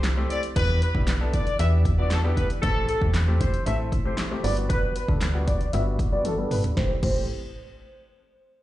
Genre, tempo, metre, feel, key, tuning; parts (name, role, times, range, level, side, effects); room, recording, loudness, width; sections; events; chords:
dance-pop; 116 BPM; 4/4; straight; A dorian; A4 = 440 Hz
bright concert grand piano; accompaniment; 0.0-7.3 s; G3 to A4; -31 LUFS; left 1 dB; sidechain pumping, low-pass filter, slapback echo
slap-like FM bass; bass; 0.0-7.3 s; G1 to E2; -24 LUFS; equal; sidechain pumping
punchy analog drum machine; drums; 0.0-7.1 s; crash cymbal, handclaps, hi-hat, kick drum, snare drum, toms; -26 LUFS; equal
clear horn section; melody; 0.3-7.3 s; A4 to E5; -29 LUFS; equal; low-pass filter, slapback echo, tape echo
little or no reverb; live gig heard through the venue's PA, club reverb, nothing above 11.0 kHz; -21 LUFS; side -15 dB against mid
0.0-6.8 A section; 6.8-8.6 B section
filter sweep 0.0-6.8; drum fill 6.3-6.8
0.0 C6; 0.6 Em7; 2.6 Am7; 4.4 Gmaj7; 6.8 Am7